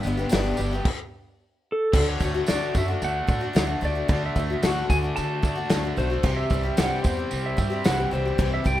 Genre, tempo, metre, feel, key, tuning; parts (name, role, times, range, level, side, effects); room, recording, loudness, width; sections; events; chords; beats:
folk rock and heartland rock; 112 BPM; 4/4; straight; A4 = 440 Hz
pedal steel guitar; melody; 0.0-8.8 s; A4 to A5; -29 LUFS; right 1 dB
picked twelve-string acoustic guitar; accompaniment; 0.0-8.8 s; G2 to G4; -30 LUFS; left 5 dB
raw garage guitar; riff; 0.0-8.8 s; G2 to G4; -32 LUFS; equal; overdrive
upright bass; bass; 0.0-8.8 s; G1 to D3; -27 LUFS; equal
tambourine; percussion; 0.0-8.8 s; -42 LUFS; right 3 dB
loose indie drum kit; drums; 0.3-8.8 s; crash cymbal, hi-hat, kick drum, snare drum; -25 LUFS; equal
light reverb, small room ambience; rough home demo mix; -22 LUFS; side -13 dB against mid
0.0-1.9 A section; 1.9-8.8 B section
pedal steel guitar solo 0.0-1.9; stop 0.9-1.9
0.0 G; 0.9 N.C.; 1.9 D; 6.2 C
0.33 0.87 1.41 | 1.94 2.48 3.02 3.55 | 4.09 4.63 5.16 5.70 | 6.24 6.77 7.31 7.85 | 8.38